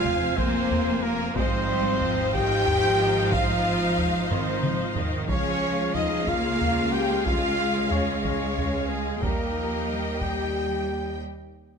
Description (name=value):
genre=cinematic, epic orchestral film score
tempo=61 BPM (dotted quarters)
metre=6/8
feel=straight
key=unclear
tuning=A4 = 440 Hz
part: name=rich studio violin section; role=melody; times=0.0-11.2 s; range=Ab4 to G5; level=-36 LUFS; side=left 2 dB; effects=none
part: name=warm symphonic violin section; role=second line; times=0.0-11.2 s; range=Ab4 to G5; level=-33 LUFS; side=left 2 dB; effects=none
part: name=bright symphonic viola section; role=accompaniment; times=0.0-11.2 s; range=Ab4 to Ab5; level=-34 LUFS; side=left 2 dB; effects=none
part: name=rich symphonic string section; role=sustained chords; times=0.0-11.2 s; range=F3 to F5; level=-31 LUFS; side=equal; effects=none
part: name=warm French horn section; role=sustained chords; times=0.0-11.2 s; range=Ab3 to G4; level=-29 LUFS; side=left 3 dB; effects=none
part: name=warm trumpet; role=stabs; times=0.0-11.2 s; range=Ab4 to G5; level=-31 LUFS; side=right 4 dB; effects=none
part: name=rich symphonic cello section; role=bass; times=0.0-11.2 s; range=Eb3 to Bb3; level=-31 LUFS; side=right 1 dB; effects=none
part: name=rich symphonic double bass section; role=bass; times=0.0-11.2 s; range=F1 to Eb2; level=-32 LUFS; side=right 3 dB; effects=none
part: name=taiko ensemble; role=drums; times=0.1-10.8 s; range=none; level=-30 LUFS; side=equal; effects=none
room=moderate recital hall reverb, RT60 1.3 s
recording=close, detailed microphones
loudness=-22 LUFS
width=side -6 dB against mid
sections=0.0-11.8 A section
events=drum fill 4.3-5.3; break 11.2-11.8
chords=0.0 Fm; 1.4 Ab6; 5.3 Db; 9.2 Eb; 11.2 N.C.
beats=0.37 | 1.36 2.34 | 3.32 4.31 | 5.29 6.28 | 7.26 8.24 | 9.23 10.21 | 11.19